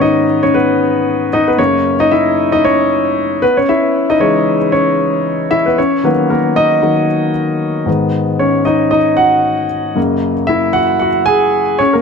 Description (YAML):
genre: pop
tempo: 114 BPM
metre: 4/4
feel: swing 56% on 16ths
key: F# mixolydian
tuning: A4 = 440 Hz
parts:
  - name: warm concert grand piano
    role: solo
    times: 0.0-12.0 s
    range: F#2 to G#5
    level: -11 LUFS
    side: left 1 dB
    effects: none
room: light reverb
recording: none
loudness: -11 LUFS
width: side -5 dB against mid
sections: 0.0-12.0 A section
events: grand piano solo 0.0-12.0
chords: 0.0 G#m; 1.6 F#; 3.4 C#m; 5.8 D#m; 7.9 G#m; 10.0 F#add9